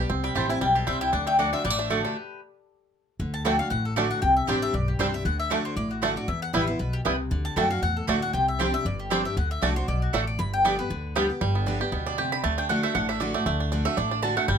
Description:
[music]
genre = bluegrass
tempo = 234 BPM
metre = 4/4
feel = swing 55% on 8ths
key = unclear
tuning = A4 = 441 Hz
[part]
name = picked steel-string acoustic guitar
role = accompaniment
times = 0.0-14.6 s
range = E2 to G4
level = -30 LUFS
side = left 2 dB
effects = none
[part]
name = bluegrass banjo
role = arpeggios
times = 0.0-14.6 s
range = G3 to G4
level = -29 LUFS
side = right 5 dB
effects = none
[part]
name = upright bass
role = bass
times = 0.0-14.6 s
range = G1 to F#2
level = -29 LUFS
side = equal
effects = none
[part]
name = mandolin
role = melody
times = 0.2-11.3 s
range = F#4 to B5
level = -27 LUFS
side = left 2 dB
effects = none
[part]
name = lap resonator guitar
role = second line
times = 0.2-2.4 s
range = G4 to G5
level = -34 LUFS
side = left 7 dB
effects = none
[part]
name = mandolin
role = stabs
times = 0.4-14.6 s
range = A3 to B5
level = -29 LUFS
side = right 4 dB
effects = none
[sound]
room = moderate small room reverb, RT60 0.5 s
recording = close, detailed microphones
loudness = -23 LUFS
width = side -7 dB against mid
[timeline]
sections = 0.0-3.2 A section; 3.2-11.4 B section; 11.4-14.6 C section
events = stop 2.2-3.2; mandolin solo 11.4-14.6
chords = 0.1 C; 1.1 D; 2.2 N.C.; 3.2 D; 4.2 Csus2; 5.3 D; 6.3 Em; 7.3 D; 8.3 Csus2; 9.4 D; 10.4 G; 12.4 D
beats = | 0.10 0.35 0.61 0.87 | 1.13 1.39 1.65 1.91 | 2.16 2.42 2.68 2.94 | 3.19 3.45 3.71 3.97 | 4.22 4.48 4.74 5.00 | 5.25 5.51 5.77 6.03 | 6.28 6.54 6.80 7.05 | 7.31 7.57 7.82 8.08 | 8.34 8.60 8.85 9.11 | 9.36 9.62 9.88 10.13 | 10.39 10.65 10.90 11.16 | 11.41 11.67 11.93 12.18 | 12.44 12.70 12.95 13.21 | 13.46 13.72 13.97 14.23 | 14.49

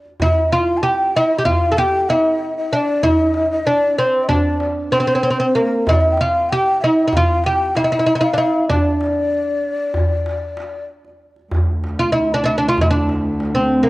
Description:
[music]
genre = Turkish makam ensemble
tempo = 191 BPM (eighths)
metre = 9/8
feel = straight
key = D makam ussak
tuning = A4 = 436 Hz
[part]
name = darbuka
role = percussion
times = 0.1-13.9 s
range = none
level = -21 LUFS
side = equal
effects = none
[part]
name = oud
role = melody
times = 0.2-13.9 s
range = Bb3 to A4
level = -16 LUFS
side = right 1 dB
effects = cassette tape
[part]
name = breathy mellow ney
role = second line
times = 0.2-10.8 s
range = Bb4 to A5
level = -21 LUFS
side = left 2 dB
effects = none
[part]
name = muted cello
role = drone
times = 11.5-13.9 s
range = D2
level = -23 LUFS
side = equal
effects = none
[sound]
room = light reverb, small room reverb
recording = home recording on cassette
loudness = -15 LUFS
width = side -19 dB against mid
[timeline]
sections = 0.2-11.5 A section; 11.5-13.9 B section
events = none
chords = none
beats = | 0.21 0.53 0.84 1.16 1.47 1.78 2.10 2.41 2.72 | 3.04 3.35 3.67 3.98 4.29 4.61 4.92 5.24 5.55 | 5.86 6.18 6.49 6.80 7.12 7.43 7.75 8.06 8.38 | 8.69 9.00 9.32 9.63 9.95 10.26 10.57 10.89 11.20 | 11.52 11.83 12.14 12.46 12.77 13.09 13.40 13.71

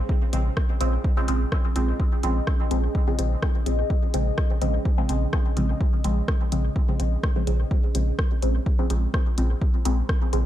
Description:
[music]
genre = dub techno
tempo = 126 BPM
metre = 4/4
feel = swing 54% on 16ths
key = Bb minor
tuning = A4 = 438 Hz
[part]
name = deep dark ambient pad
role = sustained chords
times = 0.0-10.5 s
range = Db4 to Eb5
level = -34 LUFS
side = equal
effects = chorus, built-in reverb, sidechain pumping
[part]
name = soft dub sub bass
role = bass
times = 0.0-10.5 s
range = Bb1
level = -24 LUFS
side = equal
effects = sidechain pumping
[part]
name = electronic kick drum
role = drums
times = 0.1-10.2 s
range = none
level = -24 LUFS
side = equal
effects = small room ambience
[part]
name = filtered dub chord stab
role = stabs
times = 0.3-10.5 s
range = Db3 to C4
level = -28 LUFS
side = equal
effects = phaser, sidechain pumping, dub echo
[part]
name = deep house drum kit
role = drums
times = 0.3-10.4 s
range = hi-hat, rim click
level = -33 LUFS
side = equal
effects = small room ambience, dub echo
[sound]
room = digital ambience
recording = dark, warm production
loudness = -21 LUFS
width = side -12 dB against mid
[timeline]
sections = 0.0-10.5 A section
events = none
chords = 0.0 Bbm9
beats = | 0.09 0.57 1.04 1.52 | 2.00 2.47 2.95 3.42 | 3.90 4.38 4.85 5.33 | 5.81 6.28 6.76 7.24 | 7.71 8.19 8.66 9.14 | 9.62 10.09

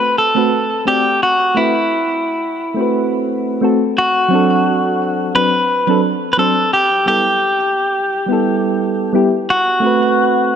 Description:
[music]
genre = sunset chillout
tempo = 87 BPM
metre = 4/4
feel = swing 54% on 16ths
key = A dorian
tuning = A4 = 439 Hz
[part]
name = clean electric guitar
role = melody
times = 0.0-10.6 s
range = E4 to B4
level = -15 LUFS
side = left 1 dB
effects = digital delay
[part]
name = soft electric-piano-like synth keys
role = accompaniment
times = 0.3-10.6 s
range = F#3 to D5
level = -16 LUFS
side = moving between left 2 dB and right 5 dB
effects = chorus, auto-pan, low-pass filter
[sound]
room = moderate plate reverb, RT60 3.6 s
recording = nothing above 10.6 kHz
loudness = -13 LUFS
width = side -8 dB against mid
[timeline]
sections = 0.0-10.6 A section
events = none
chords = 0.0 Am69; 4.0 D7; 6.7 G69; 9.5 Am69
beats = 0.53 | 1.22 1.91 2.60 3.29 | 3.98 4.66 5.35 6.04 | 6.73 7.42 8.11 8.80 | 9.49 10.18

